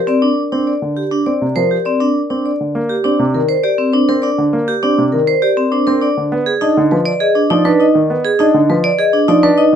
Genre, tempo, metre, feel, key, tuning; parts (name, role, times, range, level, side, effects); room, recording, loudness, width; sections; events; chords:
classical, minimalist pattern music; 101 BPM; 3/4; straight; C minor; A4 = 439 Hz
vibraphone with medium hard mallets; arpeggios; 0.0-9.8 s; C4 to D5; -15 LUFS; right 4 dB
marimba with medium hard mallets; melody; 0.1-9.8 s; Bb4 to Eb5; -18 LUFS; left 8 dB
warm grand piano; accompaniment; 0.5-9.8 s; C3 to D4; -17 LUFS; right 2 dB
light reverb; -12 LUFS; side -8 dB against mid
0.0-2.8 A section; 2.8-9.8 B section
0.0 G5; 2.8 C7(no3); 6.3 Abm6